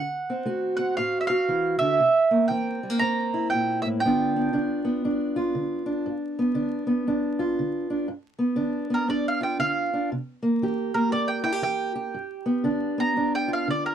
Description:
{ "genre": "acoustic country blues, solo or duo", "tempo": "118 BPM", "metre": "4/4", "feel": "swing 62% on 8ths", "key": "G mixolydian", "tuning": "A4 = 438 Hz", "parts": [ { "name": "mandolin", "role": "melody", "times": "0.0-13.9 s", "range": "Bb4 to Bb5", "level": "-25 LUFS", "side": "right 3 dB", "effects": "none" }, { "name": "fingerpicked steel-string acoustic guitar", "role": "accompaniment", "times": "0.0-13.9 s", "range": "G2 to G4", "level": "-25 LUFS", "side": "equal", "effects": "none" } ], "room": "light reverb", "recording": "dry, close 1970s-style studio recording, vinyl crackle", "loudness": "-23 LUFS", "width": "side -9 dB against mid", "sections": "0.0-8.1 A section; 8.1-13.9 B section", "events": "mandolin solo 8.1-13.9", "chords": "0.0 D7; 2.0 C7; 4.0 G7; 10.1 C7; 12.1 G7", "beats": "0.47 0.98 1.48 | 1.99 2.50 3.01 3.52 | 4.02 4.53 5.04 5.54 | 6.05 6.56 7.07 7.57 | 8.08 8.59 9.09 9.60 | 10.11 10.61 11.12 11.63 | 12.14 12.64 13.15 13.66" }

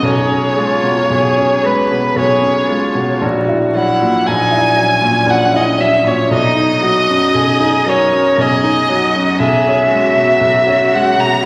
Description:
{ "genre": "classical, slow romantic movement for piano trio", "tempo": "58 BPM", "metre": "3/4", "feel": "rubato", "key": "unclear", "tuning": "A4 = 442 Hz", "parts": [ { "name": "clear violin", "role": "melody", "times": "0.0-11.5 s", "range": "B4 to A#5", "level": "-16 LUFS", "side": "equal", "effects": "none" }, { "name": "rich cello", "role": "second line", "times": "0.0-11.5 s", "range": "C#4 to B4", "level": "-22 LUFS", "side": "equal", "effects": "none" }, { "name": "clear concert grand piano", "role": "accompaniment", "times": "0.0-11.5 s", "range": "A#1 to E4", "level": "-18 LUFS", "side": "equal", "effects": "none" } ], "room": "wet concert hall reverb, RT60 2.1 s", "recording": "vinyl crackle", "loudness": "-13 LUFS", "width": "mono", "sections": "0.0-11.5 A section", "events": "none", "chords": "0.0 C#5/B; 3.2 F#7/A#; 6.3 B; 9.4 C#m7/B", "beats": "| 0.05 1.12 2.18 | 3.23 4.27 5.29 | 6.32 7.36 8.40 | 9.41 10.43 11.45" }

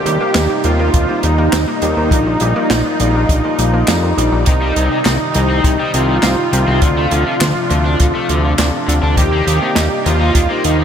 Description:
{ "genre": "synthwave", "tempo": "102 BPM", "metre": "4/4", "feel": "straight", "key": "unclear", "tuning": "A4 = 440 Hz", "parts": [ { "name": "soft supersaw", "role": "melody", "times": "0.0-10.8 s", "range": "Eb4 to G4", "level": "-18 LUFS", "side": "right 1 dB", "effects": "analog delay" }, { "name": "phased analog pad", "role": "sustained chords", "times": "0.0-10.8 s", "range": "C3 to F4", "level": "-22 LUFS", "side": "equal", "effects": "phaser, chorus, sidechain pumping" }, { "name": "analog pluck", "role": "arpeggios", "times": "0.0-4.4 s", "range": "C3 to D4", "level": "-26 LUFS", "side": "right 1 dB", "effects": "none" }, { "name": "clear electric grand piano", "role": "stabs", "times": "0.0-10.8 s", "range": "Bb3 to G5", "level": "-25 LUFS", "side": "left 3 dB", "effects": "analog delay" }, { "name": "fat analog bass", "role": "bass", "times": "0.1-10.8 s", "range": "Bb1 to F2", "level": "-16 LUFS", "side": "equal", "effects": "sidechain pumping" }, { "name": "open jazz drum kit", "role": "drums", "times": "0.1-10.8 s", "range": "handclaps, hi-hat, snare drum", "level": "-21 LUFS", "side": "right 1 dB", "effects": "none" }, { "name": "kick drum", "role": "drums", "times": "0.9-10.5 s", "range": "none", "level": "-15 LUFS", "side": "equal", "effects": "none" }, { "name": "cranked stack guitar", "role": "riff", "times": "4.5-10.8 s", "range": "C3 to Eb4", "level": "-23 LUFS", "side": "left 4 dB", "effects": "overdrive, analog chorus, analog delay" } ], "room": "moderate huge ambient reverb, RT60 7.9 s", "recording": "dreamy mix soaked in reverb", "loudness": "-12 LUFS", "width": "side -8 dB against mid", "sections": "0.0-10.8 A section", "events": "none", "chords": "0.0 Eb6; 2.1 Bb6; 4.5 Cm; 6.8 Dm7; 9.2 Eb6", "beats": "0.35 0.94 1.53 | 2.12 2.71 3.29 3.88 | 4.47 5.06 5.65 6.24 | 6.82 7.41 8.00 8.59 | 9.18 9.76 10.35" }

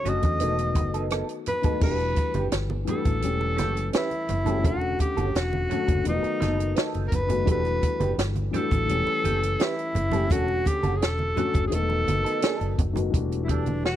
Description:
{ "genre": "lush 1970s-style soul", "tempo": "85 BPM", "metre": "4/4", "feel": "straight", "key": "E dorian", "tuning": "A4 = 439 Hz", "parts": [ { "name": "breathy tenor saxophone", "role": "melody", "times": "0.0-14.0 s", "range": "D4 to D#5", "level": "-28 LUFS", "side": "equal", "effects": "none" }, { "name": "dark grand piano", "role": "accompaniment", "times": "0.0-14.0 s", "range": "C#3 to F#5", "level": "-30 LUFS", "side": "left 6 dB", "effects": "none" }, { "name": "electric guitar through a small old amp", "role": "riff", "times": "0.1-13.9 s", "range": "B3 to B4", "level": "-33 LUFS", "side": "right 6 dB", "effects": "wah, spring reverb" }, { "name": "vintage muted fingered electric bass", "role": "bass", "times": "0.1-14.0 s", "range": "E1 to E2", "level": "-28 LUFS", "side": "equal", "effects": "none" }, { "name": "compact cocktail drum kit", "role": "drums", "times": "0.1-14.0 s", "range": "crash cymbal, hi-hat, kick drum, rim click, snare drum", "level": "-26 LUFS", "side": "equal", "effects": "none" }, { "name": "congas", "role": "percussion", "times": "0.1-14.0 s", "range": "none", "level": "-33 LUFS", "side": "right 3 dB", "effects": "none" } ], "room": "small room ambience", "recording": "dry, close 1970s-style studio recording", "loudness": "-22 LUFS", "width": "side -11 dB against mid", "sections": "0.0-1.8 A section; 1.8-13.1 B section", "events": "none", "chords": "0.4 B7/E; 1.8 Em11; 3.2 A7/E; 4.6 Dmaj7/E; 6.1 B7/E; 7.5 Em11; 8.9 A7/E; 10.3 Dmaj7/E; 11.7 B7/E; 13.1 Em11", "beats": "0.41 1.12 | 1.82 2.53 3.23 3.94 | 4.64 5.35 6.06 6.76 | 7.47 8.18 8.88 9.59 | 10.30 11.01 11.72 12.43 | 13.14 13.85" }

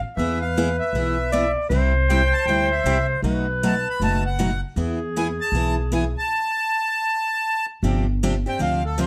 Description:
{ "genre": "acoustic string swing (jazz manouche)", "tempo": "157 BPM", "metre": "4/4", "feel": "swing 62% on 8ths", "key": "unclear", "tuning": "A4 = 443 Hz", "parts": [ { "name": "accordion", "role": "melody", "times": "0.2-9.1 s", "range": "A4 to B5", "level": "-27 LUFS", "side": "equal", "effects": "plate reverb" }, { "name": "breathy clarinet", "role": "second line", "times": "0.2-6.3 s", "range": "G#4 to D5", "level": "-27 LUFS", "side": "equal", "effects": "none" }, { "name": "picked steel-string acoustic guitar", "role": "accompaniment", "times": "0.2-9.1 s", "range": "B2 to G#4", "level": "-27 LUFS", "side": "equal", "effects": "none" }, { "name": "upright bass", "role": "bass", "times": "0.2-9.1 s", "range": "F#1 to E2", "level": "-26 LUFS", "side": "equal", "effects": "none" } ], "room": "light reverb", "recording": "none", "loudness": "-22 LUFS", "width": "mono", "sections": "0.0-7.8 A section; 7.8-9.1 B section", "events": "accordion solo 7.8-9.1", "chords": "0.2 E; 1.7 C; 3.2 B7; 4.8 E; 6.3 N.C.; 7.8 G7sus4", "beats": "| 0.17 0.55 0.94 1.32 | 1.70 2.08 2.46 2.85 | 3.23 3.61 4.00 4.38 | 4.76 5.15 5.53 5.91 | 6.30 6.68 7.07 7.45 | 7.83 8.21 8.60 8.98" }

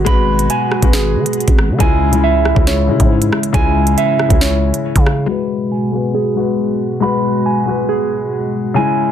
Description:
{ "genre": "hip hop, drill", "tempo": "138 BPM", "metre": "4/4", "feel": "half-time", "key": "G# minor", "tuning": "A4 = 442 Hz", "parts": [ { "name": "dark concert grand piano", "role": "accompaniment", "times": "0.0-9.1 s", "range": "C#3 to B4", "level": "-18 LUFS", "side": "left 8 dB", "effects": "low-pass filter" }, { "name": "dark analog pad", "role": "sustained chords", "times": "0.0-9.1 s", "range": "B2 to F#4", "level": "-22 LUFS", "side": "right 2 dB", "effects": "chorus, low-pass filter" }, { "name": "mellow electric guitar", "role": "arpeggios", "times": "0.0-9.1 s", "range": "G#4 to B5", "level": "-19 LUFS", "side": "right 7 dB", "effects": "low-pass filter, ping-pong delay" }, { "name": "growling 808-style bass", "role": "bass", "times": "0.0-5.3 s", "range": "G#1 to D#3", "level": "-16 LUFS", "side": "equal", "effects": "none" }, { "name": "drill drum kit", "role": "drums", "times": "0.1-5.2 s", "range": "hi-hat, kick drum, rim click, snare drum", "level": "-14 LUFS", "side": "equal", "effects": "none" } ], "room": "little or no reverb", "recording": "dense, heavily limited modern master", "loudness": "-12 LUFS", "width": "side -9 dB against mid", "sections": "0.0-5.3 A section; 5.3-9.1 B section", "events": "filter sweep 5.3-9.1", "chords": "0.0 G#m7; 1.8 C#m; 5.3 G#m7", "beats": "| 0.06 0.50 0.93 1.37 | 1.80 2.24 2.67 3.11 | 3.54 3.98 4.41 4.85 | 5.28 5.72 6.15 6.59 | 7.02 7.46 7.89 8.32 | 8.76" }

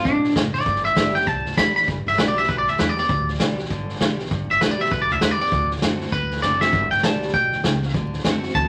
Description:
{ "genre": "rockabilly", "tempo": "198 BPM", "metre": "4/4", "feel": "swing 61% on 8ths", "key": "G major", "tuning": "A4 = 439 Hz", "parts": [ { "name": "twangy electric guitar", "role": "melody", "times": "0.0-8.7 s", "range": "D4 to B5", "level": "-22 LUFS", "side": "equal", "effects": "none" }, { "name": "picked steel-string acoustic guitar", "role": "accompaniment", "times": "0.0-8.7 s", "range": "G2 to G4", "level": "-33 LUFS", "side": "equal", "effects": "none" }, { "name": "upright bass", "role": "bass", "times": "0.0-8.7 s", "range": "F#1 to A2", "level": "-31 LUFS", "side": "equal", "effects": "none" }, { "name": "vintage drum kit", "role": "drums", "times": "0.1-8.6 s", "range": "hi-hat, kick drum, snare drum", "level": "-26 LUFS", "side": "equal", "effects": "none" } ], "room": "moderate club reverb, RT60 0.8 s", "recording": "vinyl crackle", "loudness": "-21 LUFS", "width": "mono", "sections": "0.0-1.9 A section; 1.9-8.7 B section", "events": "drum fill 6.4-6.7", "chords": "0.0 D; 0.7 G; 5.5 D7; 6.7 G; 7.9 D7", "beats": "0.05 0.36 | 0.66 0.96 1.27 1.57 | 1.88 2.18 2.48 2.79 | 3.09 3.40 3.70 4.00 | 4.31 4.61 4.91 5.22 | 5.52 5.82 6.13 6.43 | 6.73 7.03 7.34 7.64 | 7.94 8.24 8.55" }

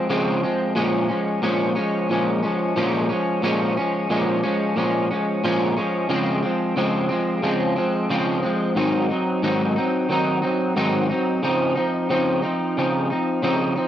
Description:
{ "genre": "indie pop", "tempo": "90 BPM", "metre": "4/4", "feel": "straight", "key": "Db major", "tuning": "A4 = 440 Hz", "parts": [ { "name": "electric guitar at the edge of break-up", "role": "solo", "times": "0.0-13.9 s", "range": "Ab2 to Eb4", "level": "-19 LUFS", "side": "equal", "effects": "analog chorus, warbly pitch drift" } ], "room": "light reverb", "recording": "nothing above 10.6 kHz", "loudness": "-19 LUFS", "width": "side -11 dB against mid", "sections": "0.0-11.4 A section; 11.4-13.9 B section", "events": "none", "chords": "0.0 Dbmaj7; 0.8 Bbm7; 6.1 Dbmaj7; 8.8 Ab7; 11.4 Dbmaj9", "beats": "0.10 | 0.77 1.44 2.10 2.77 | 3.44 4.10 4.77 5.44 | 6.10 6.77 7.44 8.10 | 8.77 9.44 10.11 10.77 | 11.44 12.11 12.78 13.44" }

